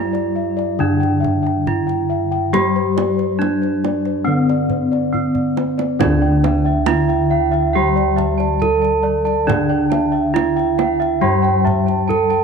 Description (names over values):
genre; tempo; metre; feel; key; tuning
Javanese gamelan; 69 BPM; 4/4; straight; D slendro; A4 = 440 Hz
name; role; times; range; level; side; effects
gamelan-type bronze metallophone; melody; 0.0-12.4 s; C4-45c to A4+25c; -19 LUFS; right 4 dB; none
gamelan-type bronze metallophone; accompaniment; 0.0-12.4 s; D3 to C4-45c; -22 LUFS; left 11 dB; none
gamelan-type bossed gongs; bass; 0.0-12.4 s; D2 to G4-35c; -22 LUFS; equal; none
gamelan-type bossed gongs; arpeggios; 0.1-12.4 s; C5-45c to A5+25c; -24 LUFS; left 9 dB; none
kendang; percussion; 0.1-12.4 s; none; -25 LUFS; right 9 dB; none
gamelan-type bronze metallophone; arpeggios; 6.0-12.4 s; C5-45c to A5+25c; -22 LUFS; right 11 dB; none
room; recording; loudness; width
moderate echo chamber reverb, RT60 2.4 s; 1960s-style stereo with parts hard left and right; -15 LUFS; side -6 dB against mid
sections
0.0-6.0 A section; 6.0-12.4 A section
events
drum fill 5.1-6.0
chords
none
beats
0.79 1.66 | 2.53 3.40 4.27 5.14 | 6.01 6.88 7.75 8.61 | 9.48 10.35 11.22 12.09